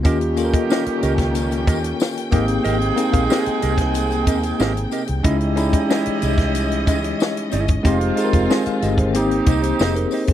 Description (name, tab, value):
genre	lush 1970s-style soul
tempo	92 BPM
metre	4/4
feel	straight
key	Ab major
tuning	A4 = 445 Hz
part	bell-like tine electric piano	accompaniment	0.0-10.3 s	Ab3 to Ab5	-21 LUFS	left 3 dB	medium stereo tremolo
part	dark studio string section	sustained chords	0.0-10.3 s	C3 to G5	-28 LUFS	left 2 dB	none
part	mellow electric guitar	riff	0.0-10.3 s	C4 to F5	-27 LUFS	right 7 dB	none
part	warm horn section	stabs	0.0-10.1 s	Eb3 to Ab4	-26 LUFS	right 10 dB	tape echo
part	vintage muted fingered electric bass	bass	0.0-10.3 s	F1 to Eb2	-23 LUFS	equal	none
part	compact cocktail drum kit	drums	0.0-10.3 s	hi-hat, kick drum, snare drum	-20 LUFS	equal	none
part	tambourine	percussion	0.0-10.3 s	none	-38 LUFS	left 17 dB	none
room	small room ambience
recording	dry, close 1970s-style studio recording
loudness	-17 LUFS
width	side -11 dB against mid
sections	0.0-10.3 A section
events	none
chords	0.0 Eb7; 2.3 Abmaj9; 5.2 Dbmadd9; 7.8 Fm7